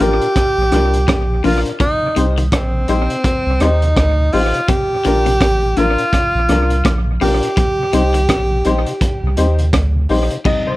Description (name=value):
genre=roots reggae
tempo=83 BPM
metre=4/4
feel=swing 59% on 16ths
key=C dorian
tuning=A4 = 439 Hz
part: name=breathy tenor saxophone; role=melody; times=0.0-9.7 s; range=C4 to G4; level=-18 LUFS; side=right 1 dB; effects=dub echo
part: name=mellow tonewheel organ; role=accompaniment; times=0.0-10.7 s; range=Bb2 to Eb4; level=-23 LUFS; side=left 1 dB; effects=slow rotary speaker
part: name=warm upright piano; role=stabs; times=0.0-10.8 s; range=G3 to Eb5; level=-19 LUFS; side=left 4 dB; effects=none
part: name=warm sub bass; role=bass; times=0.0-10.3 s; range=A1 to Eb2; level=-16 LUFS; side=equal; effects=none
part: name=crunchy breakbeat drum kit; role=drums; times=0.0-10.7 s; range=crash cymbal, hi-hat, kick drum, rim click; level=-19 LUFS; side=equal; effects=dub echo
part: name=twangy electric guitar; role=arpeggios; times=1.1-10.6 s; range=Bb2 to Eb3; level=-24 LUFS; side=left 6 dB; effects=none
room=light reverb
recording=none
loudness=-13 LUFS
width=side -17 dB against mid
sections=0.0-10.5 A section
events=none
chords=0.0 Bb; 1.8 Cm; 4.7 Bb; 7.6 Cm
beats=0.36 1.08 | 1.80 2.52 3.24 3.96 | 4.68 5.41 6.13 6.85 | 7.57 8.29 9.01 9.73 | 10.45